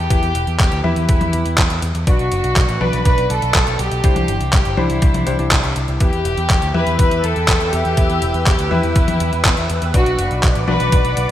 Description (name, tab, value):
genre	italo disco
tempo	122 BPM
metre	4/4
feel	straight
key	E minor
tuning	A4 = 440 Hz
part	warm chamber violin section	melody	0.0-11.3 s	E4 to B4	-21 LUFS	equal	digital delay
part	warm electric grand piano	stabs	0.0-11.3 s	D4 to E5	-25 LUFS	left 3 dB	analog chorus, low-pass filter
part	picked electric bass with an envelope filter	bass	0.0-11.3 s	E1 to E2	-20 LUFS	equal	none
part	detuned 8-bit digital drum machine	drums	0.1-11.3 s	handclaps, hi-hat, toms	-21 LUFS	left 1 dB	studio reverb, gated reverb
part	electronic kick drum	drums	0.1-11.0 s	none	-16 LUFS	equal	studio reverb
part	lush unison pad	sustained chords	6.4-11.3 s	B4 to E6	-25 LUFS	equal	chorus, phaser
room	moderate lush hall reverb, RT60 2.0 s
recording	bright 1980s-style digital production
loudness	-14 LUFS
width	side -12 dB against mid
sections	0.0-11.3 A section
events	none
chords	0.0 Em; 2.1 Bm; 4.0 Cadd9; 6.0 Em; 9.9 Bm